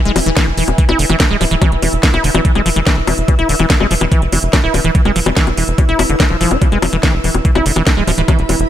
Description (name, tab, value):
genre	psychedelic trance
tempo	144 BPM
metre	4/4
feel	straight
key	E major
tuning	A4 = 435 Hz
part	granular cloud pad	texture	0.0-8.7 s	E4 to E6	-22 LUFS	right 1 dB	built-in reverb, sidechain pumping
part	liquid acid bass	riff	0.1-8.6 s	D3 to E4	-17 LUFS	moving between left 4 dB and right 4 dB	chorus, auto-pan, sidechain pumping, tape echo
part	tight sequencer bass	bass	0.1-8.7 s	D1 to F1	-18 LUFS	equal	none
part	garage drum kit	drums	0.1-8.7 s	bongos, hi-hat, snare drum	-18 LUFS	left 2 dB	none
part	electronic kick drum	drums	0.4-8.4 s	none	-13 LUFS	equal	none
room	light reverb, digital ambience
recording	none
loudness	-11 LUFS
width	side -11 dB against mid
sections	0.0-8.7 A section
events	none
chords	0.0 E5